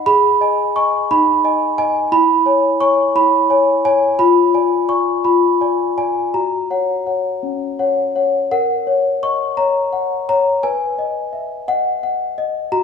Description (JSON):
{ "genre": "classical, lullaby for celesta", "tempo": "57 BPM (dotted quarters)", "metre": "6/8", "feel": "straight", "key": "B major", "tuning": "A4 = 440 Hz", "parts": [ { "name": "celesta", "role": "solo", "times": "0.0-12.8 s", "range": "C#4 to C#6", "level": "-14 LUFS", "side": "left 1 dB", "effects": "none" } ], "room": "moderate recital hall reverb, RT60 1.7 s", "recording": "recorded in a church or concert hall, small room reverb", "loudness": "-14 LUFS", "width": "side -6 dB against mid", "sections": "0.0-8.5 A section; 8.5-12.8 B section", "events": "none", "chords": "0.1 G#m; 2.1 C#m7/E; 4.2 Fdim7; 6.3 F#; 8.5 F#/A#; 10.6 B" }